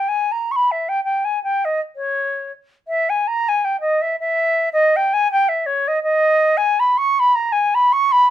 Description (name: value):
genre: balkan folk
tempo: free time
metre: none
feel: none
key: C# dorian sharp4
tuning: A4 = 441 Hz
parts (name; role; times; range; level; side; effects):
- mellow wooden flute; solo; 0.0-8.3 s; C#5 to C#6; -16 LUFS; equal; none
room: light reverb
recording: none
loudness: -16 LUFS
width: side -11 dB against mid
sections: 0.0-2.9 A section; 2.9-8.3 B section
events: none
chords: none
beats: free time